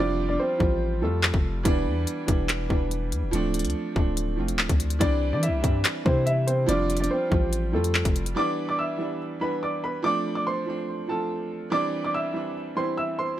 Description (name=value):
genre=hip hop, drill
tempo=143 BPM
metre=4/4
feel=half-time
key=E phrygian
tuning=A4 = 440 Hz
part: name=warm upright piano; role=melody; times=0.0-1.6, 5.0-13.4 s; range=A3 to E6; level=-27 LUFS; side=equal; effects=none
part: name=warm grand piano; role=accompaniment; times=0.0-13.4 s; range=E3 to F4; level=-28 LUFS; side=right 2 dB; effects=none
part: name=long sustained 808-style bass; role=bass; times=0.0-8.4 s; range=D1 to E3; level=-27 LUFS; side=left 1 dB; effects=none
part: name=drill drum kit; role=drums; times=0.6-8.4 s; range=handclaps, hi-hat, kick drum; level=-24 LUFS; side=left 1 dB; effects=none
room=little or no reverb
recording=none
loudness=-23 LUFS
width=side -12 dB against mid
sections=0.0-8.4 A section; 8.4-13.4 B section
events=break 0.0-1.7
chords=0.0 Fsus2; 1.7 Em7; 3.3 Dm7; 5.0 Cadd9; 6.7 Fsus2; 8.4 Em7; 10.0 Dm7; 11.7 Cadd9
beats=0.39 0.81 1.23 | 1.65 2.07 2.49 2.91 | 3.33 3.75 4.17 4.59 | 5.01 5.43 5.85 6.27 | 6.69 7.11 7.53 7.95 | 8.37 8.79 9.21 9.62 | 10.04 10.46 10.88 11.30 | 11.72 12.14 12.56 12.98